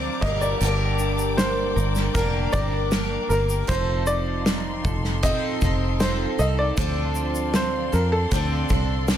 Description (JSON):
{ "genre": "acoustic pop", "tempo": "78 BPM", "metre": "4/4", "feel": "straight", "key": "G minor", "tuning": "A4 = 440 Hz", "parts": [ { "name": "warm upright piano", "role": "melody", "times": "0.0-9.2 s", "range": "A4 to Eb5", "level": "-28 LUFS", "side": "equal", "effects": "plate reverb" }, { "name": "picked twelve-string acoustic guitar", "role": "accompaniment", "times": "0.0-9.2 s", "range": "G2 to Bb4", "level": "-27 LUFS", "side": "equal", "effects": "double-tracked left and right, plate reverb" }, { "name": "warm studio string section", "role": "sustained chords", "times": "0.0-9.2 s", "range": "Eb4 to D6", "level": "-34 LUFS", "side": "left 4 dB", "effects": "none" }, { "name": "direct-recorded clean electric guitar", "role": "arpeggios", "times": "0.0-9.2 s", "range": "F3 to Bb4", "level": "-34 LUFS", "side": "right 5 dB", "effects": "none" }, { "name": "fingered electric bass", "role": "bass", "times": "0.0-9.2 s", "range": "F1 to F2", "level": "-25 LUFS", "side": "equal", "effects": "none" }, { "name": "loose indie drum kit", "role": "drums", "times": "0.2-9.2 s", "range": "crash cymbal, kick drum, shaker, snare drum", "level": "-26 LUFS", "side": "equal", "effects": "none" } ], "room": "moderate studio reverb, RT60 0.5 s", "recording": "dense, heavily limited modern master", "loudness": "-20 LUFS", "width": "side -10 dB against mid", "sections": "0.0-9.2 A section", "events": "none", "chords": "0.2 Gm; 3.7 F7; 6.8 Dm7", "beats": "| 0.61 1.38 2.15 2.92 | 3.69 4.46 5.23 6.00 | 6.77 7.54 8.32 9.09" }